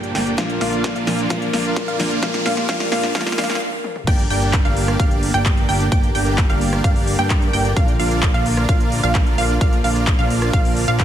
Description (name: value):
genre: EDM, festival progressive house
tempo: 130 BPM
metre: 4/4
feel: straight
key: G minor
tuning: A4 = 439 Hz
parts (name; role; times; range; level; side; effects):
- fingerpicked steel-string acoustic guitar; accompaniment; 0.0-3.6 s; G2 to F4; -25 LUFS; left 4 dB; sidechain pumping, tape echo
- warm chamber string section; sustained chords; 0.0-11.0 s; D3 to C5; -28 LUFS; right 1 dB; vintage 12-bit sampler grit, sidechain pumping
- wide unison pluck; arpeggios; 0.0-11.0 s; F5 to G5; -25 LUFS; right 1 dB; cassette tape, sidechain pumping, tape echo
- dense compressed supersaw; riff; 0.0-11.0 s; Bb3 to G5; -23 LUFS; right 2 dB; sidechain pumping, low-pass filter, tape echo
- fat analog bass; bass; 0.0-11.0 s; G1 to G2; -23 LUFS; equal; sidechain pumping
- big-room dance drum kit; drums; 0.0-11.0 s; crash cymbal, handclaps, hi-hat, rim click, snare drum, toms; -25 LUFS; equal; none
- riser; sound effects; 0.0-3.6 s; none; -30 LUFS; equal; none
- electronic kick drum; drums; 0.4-11.0 s; none; -18 LUFS; equal; high-pass filter on kick, high-pass filter on room
room: light reverb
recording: dense, heavily limited modern master, high-pass filter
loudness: -16 LUFS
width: side -10 dB against mid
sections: 0.0-4.1 A section; 4.1-11.0 B section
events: build-up 0.0-4.1; drum fill 0.0-3.6, 3.8; riser 0.0-3.6; filter sweep on synth pluck 0.0-4.1; stop 3.6-4.1; drop 4.1-11.0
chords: 0.4 Bb; 4.1 Gm; 7.8 Bb